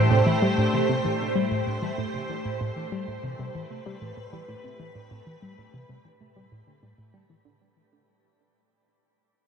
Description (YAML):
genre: ambient, sequencer-driven space music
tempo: 96 BPM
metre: 4/4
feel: straight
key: A minor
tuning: A4 = 440 Hz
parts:
  - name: evolving wavetable pad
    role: sustained chords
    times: 0.0-7.6 s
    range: A2 to C5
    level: -26 LUFS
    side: right 1 dB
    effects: ensemble chorus, built-in reverb, phaser
  - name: clean electric guitar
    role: arpeggios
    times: 0.0-7.4 s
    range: E3 to A4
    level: -37 LUFS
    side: left 3 dB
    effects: auto-pan, tape echo
  - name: tight sequenced synth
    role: riff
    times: 0.0-7.6 s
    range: A2 to A3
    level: -28 LUFS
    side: right 1 dB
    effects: chorus, tape echo
room: wet shimmer reverb, RT60 7.6 s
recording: worn, warbling old tape, cassette tape, warbly pitch drift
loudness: -24 LUFS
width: side -7 dB against mid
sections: 0.0-7.6 A section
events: fade-out on clean electric guitar 0.0-7.6; fade-out 0.0-7.6; filter sweep on synth arpeggio sound 0.0-7.6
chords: 0.0 Am7